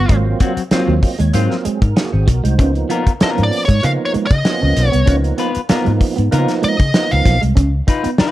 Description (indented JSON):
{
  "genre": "funk",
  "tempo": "96 BPM",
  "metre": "4/4",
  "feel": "straight",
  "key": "unclear",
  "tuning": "A4 = 440 Hz",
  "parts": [
    { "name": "nasal lead guitar with a parked wah", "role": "melody", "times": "0.0-7.4 s", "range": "Gb4 to F5", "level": "-19 LUFS", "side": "left 1 dB", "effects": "overdrive" },
    { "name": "electric guitar at the edge of break-up", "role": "riff", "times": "0.0-8.1 s", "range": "F3 to Db4", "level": "-22 LUFS", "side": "right 4 dB", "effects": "none" },
    { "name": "vintage muted fingered electric bass", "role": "bass", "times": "0.0-8.2 s", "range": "Ab1 to Db3", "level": "-16 LUFS", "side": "equal", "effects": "none" },
    { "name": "percussive tonewheel organ", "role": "stabs", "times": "0.1-7.4 s", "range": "Eb3 to Eb5", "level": "-22 LUFS", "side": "right 5 dB", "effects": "chorus vibrato, slow rotary speaker" },
    { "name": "warm soul drum kit", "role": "drums", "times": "0.1-8.3 s", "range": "hi-hat, kick drum, snare drum", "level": "-16 LUFS", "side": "equal", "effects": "none" },
    { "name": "clean electric guitar", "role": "accompaniment", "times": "0.4-8.3 s", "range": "Gb3 to Cb5", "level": "-21 LUFS", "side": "left 6 dB", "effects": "vibrato effect" }
  ],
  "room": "small room reverb",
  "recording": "dark, warm production",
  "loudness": "-13 LUFS",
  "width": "side -15 dB against mid",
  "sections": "0.0-7.6 A section",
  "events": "lead electric guitar solo 0.0-7.6; tonewheel organ fill 0.7-2.6",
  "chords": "0.0 Ab13; 2.6 Db13; 7.6 Db9"
}